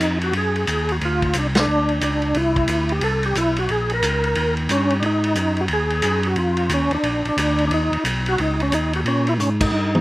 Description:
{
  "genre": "soul jazz organ trio",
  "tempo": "179 BPM",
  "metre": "4/4",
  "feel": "swing 64% on 8ths",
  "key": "unclear",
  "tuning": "A4 = 444 Hz",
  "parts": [
    { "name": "percussive tonewheel organ", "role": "melody", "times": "0.0-10.0 s", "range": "Db4 to Bb4", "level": "-21 LUFS", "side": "equal", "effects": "slow rotary speaker, overdrive, chorus vibrato" },
    { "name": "tonewheel organ", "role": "bass", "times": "0.0-10.0 s", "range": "Bb1 to Bb2", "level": "-22 LUFS", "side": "equal", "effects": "overdrive, chorus vibrato, slow rotary speaker" },
    { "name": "vintage drum kit", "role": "drums", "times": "0.0-10.0 s", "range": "crash cymbal, hi-hat, kick drum, ride cymbal, snare drum, toms", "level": "-24 LUFS", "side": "equal", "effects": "none" }
  ],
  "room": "little or no reverb",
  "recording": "recorded outdoors, with no room sound",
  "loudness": "-18 LUFS",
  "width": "side -17 dB against mid",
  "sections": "0.0-10.0 A section",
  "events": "band accent 1.5, 9.6; drum fill 9.4-10.0",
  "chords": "0.0 Ebm; 1.0 Dm7; 1.7 N.C.; 2.4 Cmaj7; 3.7 Bbm7; 4.4 Eb; 5.0 Ab5; 6.4 Dbadd9; 7.0 Bb; 7.7 Badd9; 9.1 Dbsus2"
}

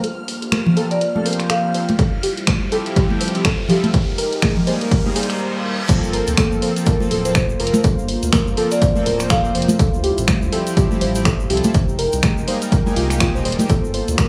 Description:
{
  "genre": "deep house",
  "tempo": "123 BPM",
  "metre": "4/4",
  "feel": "swing 58% on 16ths",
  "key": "G minor",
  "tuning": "A4 = 439 Hz",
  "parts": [
    { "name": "warm analog pad", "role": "sustained chords", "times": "0.0-14.3 s", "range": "G3 to G5", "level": "-30 LUFS", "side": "equal", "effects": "chorus, sidechain pumping" },
    { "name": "soft round pluck", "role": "arpeggios", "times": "0.0-14.3 s", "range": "F4 to C5", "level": "-27 LUFS", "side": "equal", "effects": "chorus, sidechain pumping, tape echo" },
    { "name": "round analog bass", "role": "bass", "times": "0.0-14.2 s", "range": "D1 to D2", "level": "-28 LUFS", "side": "equal", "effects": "sidechain pumping, high-pass filter" },
    { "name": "punchy analog drum machine", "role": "drums", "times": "0.0-14.3 s", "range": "crash cymbal, finger snaps, hi-hat", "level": "-27 LUFS", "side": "equal", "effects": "none" },
    { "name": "riser and reverse cymbal", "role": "sound effects", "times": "0.1-5.9 s", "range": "none", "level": "-34 LUFS", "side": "equal", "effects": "none" },
    { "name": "string machine, violins", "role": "texture", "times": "0.0-5.4 s", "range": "F6", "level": "-41 LUFS", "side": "equal", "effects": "ensemble chorus, sidechain pumping" },
    { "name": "congas", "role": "percussion", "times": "0.5-14.3 s", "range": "none", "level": "-23 LUFS", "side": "equal", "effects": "sidechain pumping on perc" },
    { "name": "chorused polysynth", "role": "stabs", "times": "0.8-13.7 s", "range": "F3 to C5", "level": "-27 LUFS", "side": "equal", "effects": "sidechain pumping, tape echo" },
    { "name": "marimba with medium hard mallets", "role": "melody", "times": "0.9-2.0, 7.3-9.9 s", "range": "C5 to F5", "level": "-26 LUFS", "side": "equal", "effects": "low-pass filter, tape echo" },
    { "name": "electronic kick drum", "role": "drums", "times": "2.0-14.3 s", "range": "none", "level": "-21 LUFS", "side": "equal", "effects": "none" },
    { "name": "tube shaker", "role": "percussion", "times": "5.9-14.3 s", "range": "none", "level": "-37 LUFS", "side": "equal", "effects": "none" }
  ],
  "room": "digital ambience",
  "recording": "dry, gritty hardware recording, studio ambience",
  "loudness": "-18 LUFS",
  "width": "mono",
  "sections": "0.0-5.9 A section; 5.9-14.3 B section",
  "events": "build-up 0.0-5.9; riser 0.1-5.4; filter sweep on analog polysynth 0.0-5.9; filter sweep on analog synth pad 0.0-5.9; filter sweep on synth arpeggio sound 0.0-5.9; reverse cymbal 4.9-5.9; break 5.4-5.9; drop 5.9-14.3",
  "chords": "0.0 Gm11; 2.0 Dm11; 3.9 Fm11; 5.9 Gm11; 9.8 Dm11; 11.7 Fm11; 13.7 Gm11"
}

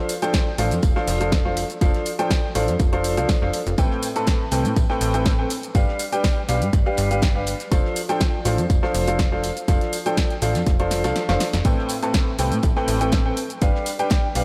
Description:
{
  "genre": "piano house",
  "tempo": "122 BPM",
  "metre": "4/4",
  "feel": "swing 53% on 16ths",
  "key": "unclear",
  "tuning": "A4 = 443 Hz",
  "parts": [
    { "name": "bright upright piano", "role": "riff", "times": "0.0-14.4 s", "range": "A2 to A5", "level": "-26 LUFS", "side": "equal", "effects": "sidechain pumping, analog delay" },
    { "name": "damped 70s drum kit", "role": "drums", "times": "0.1-14.4 s", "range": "hi-hat, snare drum, tambourine", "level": "-43 LUFS", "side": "equal", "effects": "none" },
    { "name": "punchy analog drum machine", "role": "drums", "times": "0.1-14.4 s", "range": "hi-hat, shaker, snare drum", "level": "-31 LUFS", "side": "equal", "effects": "none" },
    { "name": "electronic kick drum", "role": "drums", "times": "0.3-14.2 s", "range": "none", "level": "-22 LUFS", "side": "equal", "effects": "none" },
    { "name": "plucky analog bass", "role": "bass", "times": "0.6-14.4 s", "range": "F1 to A2", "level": "-27 LUFS", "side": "equal", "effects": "sidechain pumping" }
  ],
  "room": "moderate lush hall reverb, RT60 2.7 s",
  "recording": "dreamy mix soaked in reverb",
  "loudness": "-21 LUFS",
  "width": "mono",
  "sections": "0.0-14.4 A section",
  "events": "drum fill 10.9-11.7; kick drops out 11.2-11.7",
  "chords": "0.0 F6; 3.8 Am9; 5.5 G7; 7.7 F6; 11.7 Am9; 13.4 G7"
}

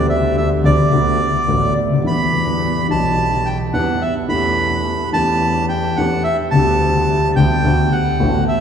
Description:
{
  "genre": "tango",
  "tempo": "107 BPM",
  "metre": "4/4",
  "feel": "rubato",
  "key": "G major",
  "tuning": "A4 = 441 Hz",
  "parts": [
    { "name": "bandoneon", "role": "melody", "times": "0.0-8.6 s", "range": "D5 to B5", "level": "-19 LUFS", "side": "right 1 dB", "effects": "none" },
    { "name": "dark concert grand piano", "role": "accompaniment", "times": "0.0-8.4 s", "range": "A1 to G4", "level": "-17 LUFS", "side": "left 2 dB", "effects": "none" },
    { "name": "warm double bass", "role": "bass", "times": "0.0-8.4 s", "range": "A1 to E2", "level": "-22 LUFS", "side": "right 2 dB", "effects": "none" }
  ],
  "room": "wet cathedral reverb, RT60 6.2 s",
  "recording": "recorded in a church or concert hall, studio ambience",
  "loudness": "-14 LUFS",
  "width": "side -8 dB against mid",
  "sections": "0.0-8.6 A section",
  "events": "none",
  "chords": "0.0 G/D; 0.9 D6; 2.1 Em; 4.3 A7/E; 6.5 G/D; 7.6 D6"
}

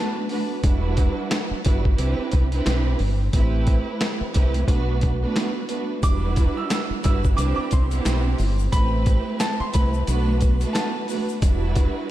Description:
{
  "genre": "hip hop, boom-bap hip-hop",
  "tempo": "89 BPM",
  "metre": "4/4",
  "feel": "swing 59% on 16ths",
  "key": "E minor",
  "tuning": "A4 = 439 Hz",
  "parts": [
    { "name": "bright upright piano", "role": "melody", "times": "0.0-0.3, 6.0-11.0 s", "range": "A5 to E6", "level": "-32 LUFS", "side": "right 1 dB", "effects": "ping-pong delay" },
    { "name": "warm studio string section", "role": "accompaniment", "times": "0.0-12.1 s", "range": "G3 to B4", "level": "-26 LUFS", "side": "right 3 dB", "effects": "cassette tape" },
    { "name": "boom bap sampler-style drum kit", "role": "drums", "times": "0.3-11.9 s", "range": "hi-hat, kick drum, snare drum", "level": "-22 LUFS", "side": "equal", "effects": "none" },
    { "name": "deep dub fingered electric bass", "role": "bass", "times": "0.6-11.9 s", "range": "E1 to C2", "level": "-22 LUFS", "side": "equal", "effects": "none" },
    { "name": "tube shaker", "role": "percussion", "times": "6.0-11.9 s", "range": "none", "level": "-43 LUFS", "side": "left 14 dB", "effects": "none" }
  ],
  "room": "light reverb",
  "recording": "none",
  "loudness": "-19 LUFS",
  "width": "side -14 dB against mid",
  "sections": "0.0-12.1 A section",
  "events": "none",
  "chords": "0.0 Bm7; 0.6 Em7; 2.0 Cmaj9; 3.3 Am7; 4.7 Bm7; 6.0 Em7; 7.4 Cmaj9; 8.7 Am7; 10.1 Bm7; 11.4 Em7"
}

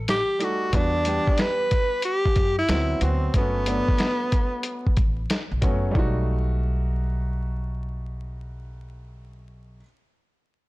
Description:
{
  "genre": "hip hop, jazz-hop",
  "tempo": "92 BPM",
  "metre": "4/4",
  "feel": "swing 66% on 16ths",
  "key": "unclear",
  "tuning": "A4 = 441 Hz",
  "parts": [
    { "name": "upright bass", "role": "bass", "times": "0.0-9.8 s", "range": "F#1 to F#2", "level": "-27 LUFS", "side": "equal", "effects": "none" },
    { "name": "breathy alto saxophone", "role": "melody", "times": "0.1-5.3 s", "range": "B3 to B4", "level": "-24 LUFS", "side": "equal", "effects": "none" },
    { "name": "lo-fi sampler-style drum kit", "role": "drums", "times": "0.1-6.2 s", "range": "hi-hat, kick drum, snare drum", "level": "-23 LUFS", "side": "equal", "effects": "none" },
    { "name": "warm upright piano", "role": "accompaniment", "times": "0.4-9.8 s", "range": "F#3 to A4", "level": "-30 LUFS", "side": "right 1 dB", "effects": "none" }
  ],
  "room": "studio reverb",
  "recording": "blown-out, overdriven recording, vinyl crackle, overdrive",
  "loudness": "-21 LUFS",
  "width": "side -19 dB against mid",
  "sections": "0.0-6.0 A section; 6.0-8.6 B section",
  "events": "none",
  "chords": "0.0 B7b13 (rootless); 0.7 Em9; 2.7 D13; 3.3 Gmaj9#11; 6.0 B7b13"
}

